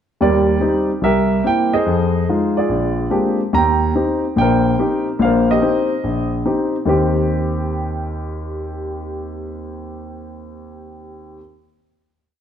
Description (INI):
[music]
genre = solo jazz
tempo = 143 BPM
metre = 4/4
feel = swing 66% on 8ths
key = Eb major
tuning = A4 = 440 Hz
[part]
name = warm grand piano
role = solo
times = 0.2-11.4 s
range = Bb1 to Bb5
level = -16 LUFS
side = equal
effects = none
[sound]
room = wet large studio reverb, RT60 1.3 s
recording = dark, warm production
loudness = -15 LUFS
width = side -9 dB against mid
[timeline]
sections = 0.2-6.9 A section; 6.9-10.2 final chord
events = none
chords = 0.2 Eb6; 1.0 C7; 1.9 Fm7; 2.7 Bb13; 3.5 Eb6